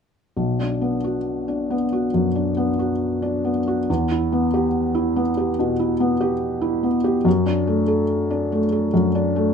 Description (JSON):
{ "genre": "classical", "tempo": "70 BPM", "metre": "4/4", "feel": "rubato", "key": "B minor", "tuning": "A4 = 437 Hz", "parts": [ { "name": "felt-muted upright piano", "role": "accompaniment", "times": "0.4-9.5 s", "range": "B1 to A4", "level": "-19 LUFS", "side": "equal", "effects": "none" } ], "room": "moderate studio reverb, RT60 0.5 s", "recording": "minimal, uncompressed stereo recording", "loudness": "-19 LUFS", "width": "side -6 dB against mid", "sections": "0.4-9.5 A section", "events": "none", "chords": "0.4 Bm; 3.9 Em; 7.3 D/F#", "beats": "| 0.38 1.26 2.13 3.01 | 3.88 4.73 5.58 6.42 | 7.25 8.11 8.96" }